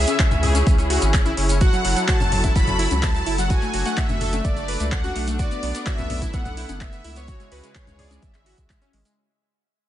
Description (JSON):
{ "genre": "progressive house", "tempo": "127 BPM", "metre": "4/4", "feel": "straight", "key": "unclear", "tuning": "A4 = 441 Hz", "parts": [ { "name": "soft supersaw", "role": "melody", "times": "0.0-8.9 s", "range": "B4 to B5", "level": "-28 LUFS", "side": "equal", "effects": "sidechain pumping, ping-pong delay" }, { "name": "muted studio string section", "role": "sustained chords", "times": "0.0-9.2 s", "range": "C#3 to A4", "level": "-29 LUFS", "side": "equal", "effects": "sidechain pumping" }, { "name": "analog pluck", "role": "arpeggios", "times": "0.0-9.1 s", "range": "F#3 to B4", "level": "-28 LUFS", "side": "equal", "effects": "chorus, sidechain pumping, dub echo" }, { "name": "round analog bass", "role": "bass", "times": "0.0-9.0 s", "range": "F#1 to C#2", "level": "-24 LUFS", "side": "equal", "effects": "sidechain pumping" }, { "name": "deep house drum kit", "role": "drums", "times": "0.1-9.1 s", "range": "handclaps, hi-hat", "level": "-29 LUFS", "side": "equal", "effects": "studio reverb" }, { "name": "tube shaker", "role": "percussion", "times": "0.1-9.1 s", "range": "none", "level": "-35 LUFS", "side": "right 2 dB", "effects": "none" }, { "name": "electronic kick drum", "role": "drums", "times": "0.2-8.8 s", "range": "none", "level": "-21 LUFS", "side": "equal", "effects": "studio reverb" }, { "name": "electronic toms and congas", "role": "percussion", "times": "0.3-8.9 s", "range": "none", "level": "-30 LUFS", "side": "left 2 dB", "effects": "sidechain pumping on toms, studio reverb, sidechain pumping on perc" } ], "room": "little or no reverb", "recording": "nothing above 10.5 kHz", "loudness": "-18 LUFS", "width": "side -12 dB against mid", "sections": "0.0-9.2 A section", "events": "drop 0.0-9.2; fade-out 1.6-9.2", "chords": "0.0 C#m; 1.6 F#m7; 3.5 D/F#; 7.3 C#m", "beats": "0.20 0.67 1.14 | 1.61 2.08 2.56 3.03 | 3.50 3.97 4.45 4.92 | 5.39 5.86 6.34 6.81 | 7.28 7.75 8.23 8.70" }